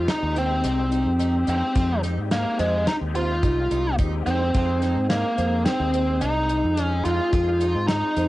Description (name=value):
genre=progressive instrumental, band music in an uneven meter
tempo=108 BPM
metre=5/4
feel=straight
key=F minor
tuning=A4 = 437 Hz
part: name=biting lead guitar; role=melody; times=0.0-8.3 s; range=Ab3 to F4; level=-23 LUFS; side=equal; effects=overdrive, cassette tape, analog delay
part: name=bright tonewheel organ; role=accompaniment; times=0.0-8.3 s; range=Ab3 to Ab4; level=-33 LUFS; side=left 10 dB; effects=overdrive, chorus vibrato, slow rotary speaker
part: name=modern bright fingered electric bass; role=bass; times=0.0-8.3 s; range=C2 to Ab2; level=-25 LUFS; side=equal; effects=none
part: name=picked twelve-string acoustic guitar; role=arpeggios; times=0.1-8.3 s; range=C4 to F4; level=-34 LUFS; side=right 7 dB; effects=none
part: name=damped 70s drum kit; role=drums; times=0.1-8.3 s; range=hi-hat, kick drum, snare drum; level=-25 LUFS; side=equal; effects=cassette tape
part: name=vibraphone with medium mallets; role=second line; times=4.3-8.3 s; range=Bb4 to F5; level=-32 LUFS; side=right 6 dB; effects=none
room=light reverb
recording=home recording on cassette, nothing above 11.0 kHz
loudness=-20 LUFS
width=side -17 dB against mid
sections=0.0-8.3 A section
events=none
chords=0.0 Fm7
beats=0.09 0.65 1.20 | 1.76 2.32 2.88 3.43 3.99 | 4.55 5.11 5.66 6.22 6.78 | 7.33 7.89